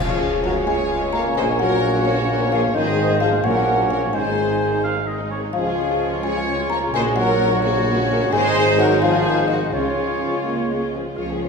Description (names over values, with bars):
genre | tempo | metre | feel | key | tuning
cinematic | 86 BPM (dotted quarters) | 6/8 | straight | Db major | A4 = 439 Hz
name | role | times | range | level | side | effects
buzzing marimba with medium mallets | melody | 0.0-11.5 s | F4 to Bb5 | -28 LUFS | left 6 dB | none
warm chamber violin section | melody | 0.0-11.5 s | Eb4 to F5 | -29 LUFS | left 4 dB | none
clear oboe | second line | 0.0-10.9 s | C5 to F5 | -29 LUFS | right 1 dB | none
mellow flute section | second line | 0.0-10.9 s | Db5 to Bb5 | -27 LUFS | left 1 dB | none
rich studio violin section | second line | 0.0-11.5 s | F4 to Db5 | -26 LUFS | equal | none
warm clarinet | second line | 0.0-10.9 s | Db4 to Gb4 | -30 LUFS | left 2 dB | none
mellow bassoon | accompaniment | 0.0-10.9 s | Gb3 to Bb3 | -28 LUFS | right 2 dB | none
warm chamber viola section | accompaniment | 0.0-11.5 s | Eb3 to Ab4 | -30 LUFS | right 3 dB | none
mellow French horn section | sustained chords | 0.0-11.5 s | Db3 to Ab4 | -25 LUFS | left 2 dB | none
concert harp | arpeggios | 0.0-11.5 s | Ab2 to Db5 | -29 LUFS | left 2 dB | none
warm chamber cello section | bass | 0.0-11.5 s | Ab2 to F3 | -30 LUFS | right 3 dB | none
warm chamber double bass section | bass | 0.0-11.5 s | Ab1 to Db2 | -30 LUFS | right 3 dB | none
warm tuba | bass | 0.0-11.5 s | Ab1 to Db2 | -27 LUFS | right 3 dB | none
room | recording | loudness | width
wet recital hall reverb, RT60 1.5 s | recorded in a church or concert hall | -17 LUFS | side -5 dB against mid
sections
0.0-11.2 A section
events
none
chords
0.0 Db; 1.4 Gb/Bb; 2.8 Ab; 3.4 Gb/Bb; 4.1 Ab; 5.6 Db; 6.9 Gb/Bb; 8.3 Ab; 9.7 Db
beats
0.67 | 1.37 2.06 | 2.76 3.45 | 4.15 4.85 | 5.55 6.25 | 6.95 7.64 | 8.33 9.03 | 9.74 10.45 | 11.17